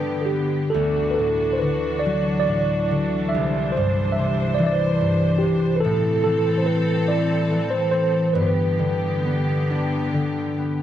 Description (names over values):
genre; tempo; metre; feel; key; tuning
celtic folk, Celtic slow air; 47 BPM (dotted quarters); 6/8; uneven beats, rubato; unclear; A4 = 441 Hz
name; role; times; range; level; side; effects
mellow tine electric piano; melody; 0.0-10.1 s; G4 to E5; -23 LUFS; right 2 dB; medium stereo tremolo
concert harp; accompaniment; 0.0-10.8 s; C2 to E4; -21 LUFS; left 2 dB; none
clear symphonic string section; sustained chords; 0.0-10.8 s; D3 to C5; -28 LUFS; right 1 dB; none
room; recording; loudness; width
little or no reverb; dry, close 1970s-style studio recording; -19 LUFS; side -11 dB against mid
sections
0.0-10.8 A section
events
none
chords
0.0 G; 0.8 Dadd9; 3.3 Cadd9; 5.8 Am; 8.4 G